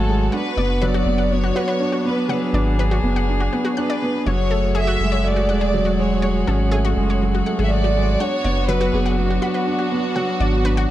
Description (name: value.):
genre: piano and strings electronica.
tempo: 122 BPM.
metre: 4/4.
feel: straight.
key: unclear.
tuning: A4 = 440 Hz.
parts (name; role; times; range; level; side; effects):
dark studio violin section; melody; 0.0-10.9 s; F#4 to E5; -25 LUFS; equal; none.
muted string quartet; sustained chords; 0.0-10.9 s; B3 to G#5; -28 LUFS; equal; none.
felt-muted upright piano; riff; 0.0-10.9 s; F#3 to F#4; -22 LUFS; right 1 dB; none.
warm sub bass; bass; 0.0-10.9 s; E1 to G#1; -20 LUFS; equal; none.
analog pluck; arpeggios; 0.3-10.9 s; F#4 to F#6; -30 LUFS; left 3 dB; chorus, tape echo.
room: light reverb, small room ambience.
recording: dark, warm production.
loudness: -17 LUFS.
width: side -13 dB against mid.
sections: 0.0-10.9 A section.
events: none.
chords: 0.3 Bm/F#; 4.3 F#madd9; 8.2 Bm/F#.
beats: | 0.33 0.82 1.31 1.80 | 2.30 2.79 3.28 3.77 | 4.26 4.76 5.25 5.74 | 6.23 6.72 7.21 7.71 | 8.20 8.69 9.18 9.67 | 10.17 10.66.